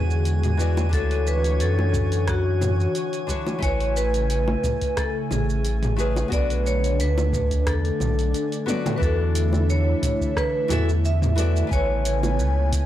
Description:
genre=sunset chillout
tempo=89 BPM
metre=4/4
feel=swing 54% on 16ths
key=A major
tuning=A4 = 439 Hz
part: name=vibraphone with medium hard mallets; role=melody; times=0.0-12.7 s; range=F#4 to E5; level=-27 LUFS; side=left 1 dB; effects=analog delay
part: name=nylon-string guitar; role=accompaniment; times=0.0-12.9 s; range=D3 to G#5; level=-30 LUFS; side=moving between left 4 dB and right 3 dB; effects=auto-pan
part: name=airy breathy pad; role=sustained chords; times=0.0-12.9 s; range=C#3 to G#5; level=-29 LUFS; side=equal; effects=chorus
part: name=warm sub bass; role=bass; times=0.0-12.9 s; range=A1 to F#2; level=-22 LUFS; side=equal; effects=tube saturation
part: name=drifting glass-harmonics texture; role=texture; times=0.0-9.0 s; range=G#5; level=-40 LUFS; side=right 4 dB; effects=chorus, built-in reverb
part: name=deep house drum kit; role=drums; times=0.1-12.9 s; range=hi-hat, rim click, shaker, toms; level=-31 LUFS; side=right 1 dB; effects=none
part: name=bongos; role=percussion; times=0.8-12.4 s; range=none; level=-31 LUFS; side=left 1 dB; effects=none
part: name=electronic kick drum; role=drums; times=0.9-12.9 s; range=none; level=-26 LUFS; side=equal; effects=none
room=light reverb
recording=dry, gritty hardware recording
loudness=-20 LUFS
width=side -12 dB against mid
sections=0.0-9.0 A section; 9.0-12.9 B section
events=drum fill 8.7-9.0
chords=0.0 E9; 0.9 Dmaj9; 3.6 Amaj7; 6.3 Bm7; 9.0 E7sus4; 11.7 Amaj9

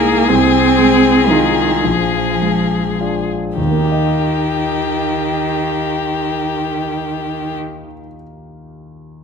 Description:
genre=classical, slow romantic movement for piano quintet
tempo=33-42 BPM (dotted quarters)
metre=6/8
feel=rubato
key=Eb major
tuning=A4 = 440 Hz
part: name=rich violin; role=melody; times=0.0-7.6 s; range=G4 to Ab4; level=-19 LUFS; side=left 10 dB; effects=none
part: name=rich cello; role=second line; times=0.0-7.6 s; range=Eb3 to C4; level=-17 LUFS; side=right 4 dB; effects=none
part: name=clear concert grand piano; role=accompaniment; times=0.0-9.2 s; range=Bb1 to Eb5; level=-19 LUFS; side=left 1 dB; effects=none
room=wet recital hall reverb, RT60 1.8 s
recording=close, detailed microphones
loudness=-13 LUFS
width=side -6 dB against mid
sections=0.0-3.6 A section; 3.6-6.8 B section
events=slowing down 0.0-3.6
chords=0.3 Fm7/C; 1.9 Bb7; 3.6 Eb

